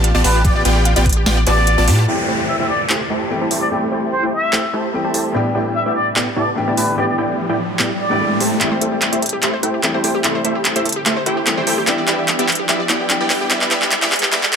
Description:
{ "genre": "future bass", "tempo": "147 BPM", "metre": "4/4", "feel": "half-time", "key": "A minor", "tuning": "A4 = 443 Hz", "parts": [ { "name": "wide unison pluck", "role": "arpeggios", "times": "0.0-2.0, 8.6-14.6 s", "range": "G4 to F5", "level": "-26 LUFS", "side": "left 1 dB", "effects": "sidechain pumping, ping-pong delay" }, { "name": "supersaw stab", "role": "riff", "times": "0.0-14.4 s", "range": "A2 to A5", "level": "-20 LUFS", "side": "right 1 dB", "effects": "sidechain pumping, low-pass filter, ping-pong delay" }, { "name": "saturated sub bass", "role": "bass", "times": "0.0-2.1 s", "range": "A1 to A2", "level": "-15 LUFS", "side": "equal", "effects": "sidechain pumping" }, { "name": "trap drum kit", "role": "drums", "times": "0.0-14.6 s", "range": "handclaps, hi-hat, snare drum", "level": "-19 LUFS", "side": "right 1 dB", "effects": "overdrive" }, { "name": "trumpet with plunger mute", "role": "melody", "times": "0.2-8.4 s", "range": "B4 to E5", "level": "-22 LUFS", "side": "equal", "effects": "sidechain pumping, ping-pong delay" }, { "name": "electronic kick drum", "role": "drums", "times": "0.4-1.1 s", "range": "none", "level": "-16 LUFS", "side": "equal", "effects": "overdrive" }, { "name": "felt-muted upright piano", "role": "accompaniment", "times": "2.1-14.6 s", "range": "A2 to G4", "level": "-24 LUFS", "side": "left 3 dB", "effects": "sidechain pumping, ping-pong delay" }, { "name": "downlifter and riser", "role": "sound effects", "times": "2.1-14.6 s", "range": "none", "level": "-27 LUFS", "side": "equal", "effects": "none" } ], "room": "light reverb", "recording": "dense, heavily limited modern master, high-pass filter", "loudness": "-14 LUFS", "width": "side -6 dB against mid", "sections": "0.0-2.1 A section; 2.1-8.6 B section; 8.6-14.6 C section", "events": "drop 0.0-2.1; kick drops out 1.3-2.1; riser 6.2-8.6, 8.6-14.6; build-up 8.6-14.6; drum fill 8.6-14.6; filter sweep on supersaw synth 8.6-14.6", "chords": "0.0 G7/A; 2.1 Am7; 5.3 Em7/A; 8.4 Am7; 11.9 Em7" }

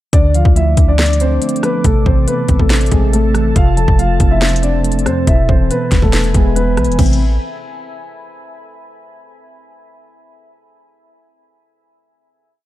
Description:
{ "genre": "hip hop, trap", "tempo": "140 BPM", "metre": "4/4", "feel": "half-time", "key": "A harmonic minor", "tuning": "A4 = 440 Hz", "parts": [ { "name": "dark concert grand piano", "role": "melody", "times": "0.1-7.2 s", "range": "G#3 to A5", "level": "-18 LUFS", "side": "left 1 dB", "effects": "none" }, { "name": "mellow tine electric piano", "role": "accompaniment", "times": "0.1-7.2 s", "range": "B2 to D5", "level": "-19 LUFS", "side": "equal", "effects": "medium stereo tremolo" }, { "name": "deep dark ambient pad", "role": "sustained chords", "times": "0.7-7.2 s", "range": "A4 to D6", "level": "-29 LUFS", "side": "right 1 dB", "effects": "chorus, built-in reverb" }, { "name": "clean 808-style bass", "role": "bass", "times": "0.1-7.4 s", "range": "E1 to F2", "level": "-14 LUFS", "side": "equal", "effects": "none" }, { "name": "trap drum kit", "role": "drums", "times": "0.1-7.2 s", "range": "crash cymbal, hi-hat, kick drum, rim click, snare drum", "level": "-14 LUFS", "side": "equal", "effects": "none" } ], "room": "digital ambience", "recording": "dark, warm production", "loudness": "-11 LUFS", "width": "side -15 dB against mid", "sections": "0.1-7.0 hook; 7.0-8.7 final chord", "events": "none", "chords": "0.1 Dm; 1.8 Am; 3.6 F; 5.3 E; 7.0 Am" }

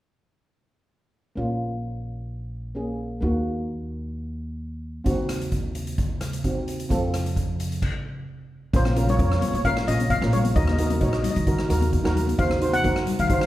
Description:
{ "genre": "calypso", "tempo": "131 BPM", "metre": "4/4", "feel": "straight", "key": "Bb minor", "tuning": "A4 = 440 Hz", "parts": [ { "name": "steel pan", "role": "accompaniment", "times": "1.4-13.4 s", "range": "Bb3 to Db5", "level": "-28 LUFS", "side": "right 1 dB", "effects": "none" }, { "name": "upright bass", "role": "bass", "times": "1.4-13.5 s", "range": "Bb1 to Eb3", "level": "-26 LUFS", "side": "equal", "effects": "none" }, { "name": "street-band drum kit", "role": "drums", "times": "5.1-13.5 s", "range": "crash cymbal, hi-hat, kick drum, rim click", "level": "-27 LUFS", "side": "equal", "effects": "none" }, { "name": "steel pan", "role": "melody", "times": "8.8-13.5 s", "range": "C5 to Gb5", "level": "-27 LUFS", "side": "left 2 dB", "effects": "none" }, { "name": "congas", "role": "percussion", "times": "8.9-13.2 s", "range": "none", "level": "-30 LUFS", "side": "left 4 dB", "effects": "none" } ], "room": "wet recital hall reverb, RT60 1.4 s", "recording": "heard from further back in the room", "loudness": "-22 LUFS", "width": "side -15 dB against mid", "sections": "1.4-8.7 A section; 8.7-13.5 B section", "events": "stop 7.8-8.7", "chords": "1.4 Bbm; 3.2 Ebm; 5.1 Cdim/Eb; 6.9 F; 8.7 Bbm; 10.6 Ebm; 12.4 Cdim/Eb" }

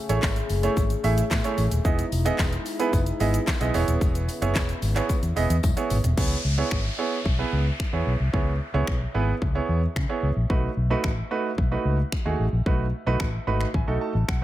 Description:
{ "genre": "dance-pop", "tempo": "111 BPM", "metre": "4/4", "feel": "straight", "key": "C# minor", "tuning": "A4 = 442 Hz", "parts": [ { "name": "dark French horn section", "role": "sustained chords", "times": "0.0-6.2 s", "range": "C#3 to G#4", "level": "-33 LUFS", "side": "left 4 dB", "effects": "sidechain pumping" }, { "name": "clear grand piano", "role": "accompaniment", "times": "0.1-14.4 s", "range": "A3 to B5", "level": "-27 LUFS", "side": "right 4 dB", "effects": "sidechain pumping" }, { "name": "vintage muted fingered electric bass", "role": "bass", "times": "0.1-14.4 s", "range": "D#1 to C#3", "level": "-24 LUFS", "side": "left 1 dB", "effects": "sidechain pumping" }, { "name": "pop drum kit", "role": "drums", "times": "0.1-14.4 s", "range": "crash cymbal, finger snaps, handclaps, hi-hat, kick drum, shaker, snare drum, toms", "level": "-26 LUFS", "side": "equal", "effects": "none" }, { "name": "tambourine", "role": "percussion", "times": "0.2-6.0 s", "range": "none", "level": "-45 LUFS", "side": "left 14 dB", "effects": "none" }, { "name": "downlifter", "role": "sound effects", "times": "6.2-10.5 s", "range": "none", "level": "-35 LUFS", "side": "left 1 dB", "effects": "none" } ], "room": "light reverb, digital ambience", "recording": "echo-heavy mix", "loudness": "-22 LUFS", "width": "side -14 dB against mid", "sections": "0.0-6.2 A section; 6.2-14.4 B section", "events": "drum fill 5.6-6.2; grand piano fill 13.2-14.4", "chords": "0.0 Amaj7; 1.9 Emaj7; 3.7 C#m7; 10.5 B7" }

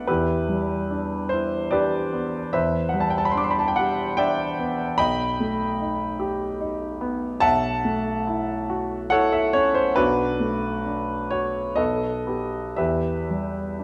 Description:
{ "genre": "classical, impressionist solo piano", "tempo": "58-76 BPM", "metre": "3/4", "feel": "rubato", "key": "E minor", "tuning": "A4 = 441 Hz", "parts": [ { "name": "warm grand piano", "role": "solo", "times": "0.0-13.8 s", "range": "B1 to D6", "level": "-24 LUFS", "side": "equal", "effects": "none" } ], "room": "wet recital hall reverb, RT60 1.7 s", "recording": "dark, warm production", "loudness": "-24 LUFS", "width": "mono", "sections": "0.0-13.8 A section", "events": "none", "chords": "0.1 Em7; 2.5 Cmaj9/E; 5.0 Baug7; 7.4 F#m7/B; 10.0 Bm7; 11.8 Baug7; 12.8 Em" }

